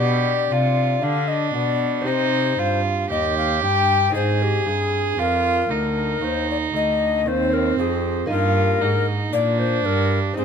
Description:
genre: classical, baroque-style sonata movement with continuo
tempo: 58 BPM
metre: 4/4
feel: straight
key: unclear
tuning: A4 = 439 Hz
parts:
  - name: mellow tenor recorder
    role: melody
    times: 0.0-10.4 s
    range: G4 to G5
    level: -23 LUFS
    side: left 10 dB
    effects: none
  - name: rich violin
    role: second line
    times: 0.0-10.4 s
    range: C4 to Ab4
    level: -23 LUFS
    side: right 8 dB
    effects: none
  - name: lute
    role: accompaniment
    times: 0.0-10.4 s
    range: D2 to Ab4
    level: -28 LUFS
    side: equal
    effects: none
  - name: rich cello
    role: bass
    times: 0.0-10.4 s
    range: D2 to D3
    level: -24 LUFS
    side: right 2 dB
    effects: none
room: light reverb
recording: close, detailed microphones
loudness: -18 LUFS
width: side -7 dB against mid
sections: 0.0-10.4 A section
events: none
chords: 0.0 G/B; 2.1 Cm; 4.1 Ab; 8.3 Eb/G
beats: 1.02 2.06 3.10 | 4.14 5.18 6.22 7.26 | 8.30 9.33 10.38

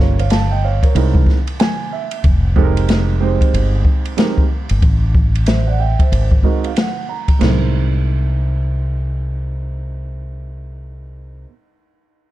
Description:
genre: hip hop, jazz-hop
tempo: 93 BPM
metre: 4/4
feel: swing 63% on 16ths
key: unclear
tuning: A4 = 439 Hz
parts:
  - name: dark concert grand piano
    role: accompaniment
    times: 0.0-11.5 s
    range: G3 to Bb5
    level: -22 LUFS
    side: right 10 dB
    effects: low-pass filter
  - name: mellow fretless electric bass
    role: bass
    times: 0.0-11.4 s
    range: F1 to C2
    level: -17 LUFS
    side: equal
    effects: none
  - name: open jazz drum kit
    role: drums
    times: 0.0-7.6 s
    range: crash cymbal, hi-hat, kick drum, ride cymbal, snare drum, toms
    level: -15 LUFS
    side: equal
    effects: none
room: studio ambience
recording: dark, warm production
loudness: -13 LUFS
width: side -15 dB against mid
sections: 0.0-7.4 A section; 7.4-10.0 B section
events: filter sweep on grand piano 0.0-7.4; grand piano fill 1.3-2.2, 6.1-7.4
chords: 0.0 Gm7b5; 1.0 C7alt; 2.2 Fm11; 4.8 Am; 6.1 Ab9; 7.4 C7alt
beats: 0.31 0.95 1.60 | 2.24 2.89 3.53 4.18 | 4.82 5.47 6.11 6.76 | 7.40 8.05 8.69 9.34

